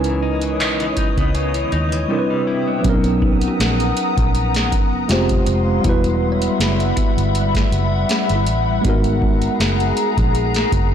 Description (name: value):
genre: contemporary R&B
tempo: 80 BPM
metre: 4/4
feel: swing 54% on 16ths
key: B major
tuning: A4 = 440 Hz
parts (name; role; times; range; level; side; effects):
- tine electric piano; accompaniment; 0.0-10.9 s; F#3 to C5; -21 LUFS; right 2 dB; medium stereo tremolo
- glassy FM pad; sustained chords; 0.0-10.9 s; G3 to E6; -22 LUFS; left 3 dB; ensemble chorus, built-in reverb, sidechain pumping
- direct-recorded clean electric guitar; arpeggios; 0.0-3.4 s; C3 to E4; -26 LUFS; left 6 dB; tremolo, ping-pong delay
- vintage muted fingered electric bass; bass; 0.0-10.9 s; E1 to D#2; -21 LUFS; equal; none
- booming analog drum machine; drums; 0.0-10.9 s; handclaps, hi-hat, kick drum, snare drum; -20 LUFS; equal; none
- mallet-like synth pluck; texture; 3.2-9.4 s; B3 to C#5; -34 LUFS; left 1 dB; none
room: light reverb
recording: blown-out, overdriven recording, overdrive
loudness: -15 LUFS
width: side -8 dB against mid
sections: 0.0-2.8 A section; 2.8-10.9 B section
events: none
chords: 0.0 C#m9; 2.1 Cmaj7; 2.8 Bmaj7; 5.1 Fmadd9; 5.8 Emadd9; 8.8 G#m9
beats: 0.60 1.35 2.10 | 2.85 3.60 4.35 5.10 | 5.85 6.60 7.35 8.10 | 8.85 9.60 10.35